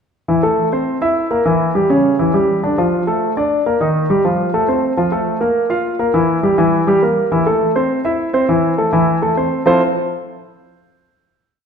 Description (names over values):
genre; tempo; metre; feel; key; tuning
jazz; 205 BPM; 4/4; straight; F major; A4 = 440 Hz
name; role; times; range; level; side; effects
warm concert grand piano; solo; 0.3-9.8 s; C#3 to F5; -13 LUFS; equal; none
room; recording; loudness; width
wet recital hall reverb, RT60 1.4 s; recorded in a church or concert hall; -13 LUFS; side -6 dB against mid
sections
0.3-9.7 A section; 9.7-10.8 final chord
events
none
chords
0.3 Am/E; 1.5 C#dim; 2.6 Dm; 3.8 Ebadd9; 4.4 F; 5.0 Bb5; 6.1 Edim; 7.3 Am/E; 9.7 Fmaj7